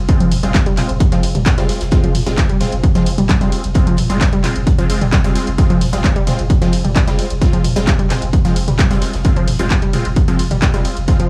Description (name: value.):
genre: driving peak-time techno.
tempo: 131 BPM.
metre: 4/4.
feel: straight.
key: F minor.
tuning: A4 = 440 Hz.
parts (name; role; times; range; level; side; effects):
warm sub bass; bass; 0.0-11.3 s; F1; -24 LUFS; equal; overdrive, sidechain pumping, low-pass filter.
supersaw stab; stabs; 0.1-11.3 s; Ab3 to F4; -26 LUFS; equal; phaser, sidechain pumping, digital delay.
electronic kick drum; drums; 0.1-11.2 s; none; -17 LUFS; equal; overdrive.
open jazz drum kit; drums; 0.1-11.2 s; hi-hat, snare drum; -38 LUFS; equal; none.
punchy analog drum machine; drums; 0.1-11.3 s; handclaps, hi-hat, ride cymbal, toms; -24 LUFS; equal; sidechain pumping on hats, sidechain pumping on cymbals, sidechain pumping on toms.
unison pluck; riff; 0.2-11.3 s; F3 to G3; -23 LUFS; equal; sidechain pumping, digital delay.
room: digital ambience.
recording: studio reverb.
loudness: -15 LUFS.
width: mono.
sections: 0.0-11.3 A section.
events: none.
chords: 0.0 Fm.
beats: | 0.09 0.54 1.00 1.46 | 1.92 2.38 2.83 3.29 | 3.75 4.21 4.67 5.12 | 5.58 6.04 6.50 6.96 | 7.42 7.87 8.33 8.79 | 9.25 9.71 10.16 10.62 | 11.08.